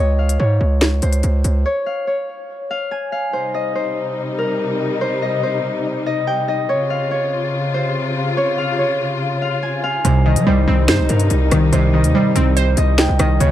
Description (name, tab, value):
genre	hip hop, drill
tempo	143 BPM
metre	4/4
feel	half-time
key	C phrygian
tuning	A4 = 441 Hz
part	Celtic harp	melody	0.0-13.5 s	Bb4 to Ab5	-21 LUFS	left 2 dB	none
part	distorted 808-style bass	bass	0.0-1.6, 10.0-13.5 s	C2 to G3	-15 LUFS	equal	distortion
part	drill drum kit	drums	0.3-1.5, 10.0-13.5 s	finger snaps, hi-hat, rim click, snare drum	-19 LUFS	equal	none
part	muted studio string section	sustained chords	3.3-13.5 s	C3 to F4	-22 LUFS	left 2 dB	none
part	glassy wavetable pluck	accompaniment	10.0-13.5 s	C3 to C5	-18 LUFS	right 2 dB	chorus
room	studio ambience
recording	dark, warm production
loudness	-15 LUFS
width	side -12 dB against mid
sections	0.0-3.3 A section; 3.3-13.5 B section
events	break 1.7-3.3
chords	0.0 Db5; 3.3 Cm; 6.7 Dbmaj7; 10.0 Cm